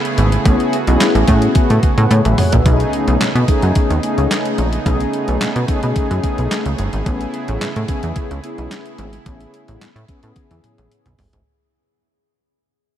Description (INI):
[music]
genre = early-eighties boogie funk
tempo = 109 BPM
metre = 4/4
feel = straight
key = unclear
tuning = A4 = 441 Hz
[part]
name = brassy analog pad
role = sustained chords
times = 0.0-11.4 s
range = C#3 to G#4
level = -23 LUFS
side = right 3 dB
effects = chorus, tremolo
[part]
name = crisp 8-bit digital drum machine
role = drums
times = 0.1-11.5 s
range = handclaps, hi-hat, kick drum, snare drum, toms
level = -19 LUFS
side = equal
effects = overdrive
[part]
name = plucky analog bass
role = bass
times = 0.2-11.4 s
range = G1 to B2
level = -16 LUFS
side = equal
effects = none
[part]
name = mellow synth brass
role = accompaniment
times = 0.5-11.1 s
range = A3 to F#5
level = -21 LUFS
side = left 3 dB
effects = chorus
[sound]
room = light reverb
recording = none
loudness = -14 LUFS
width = side -11 dB against mid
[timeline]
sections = 0.0-2.7 A section; 2.7-11.5 B section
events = drum fill 2.1-2.7, 10.4-11.5; fade-out 2.7-11.5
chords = 0.0 Amaj9; 2.7 B13; 7.1 Amaj9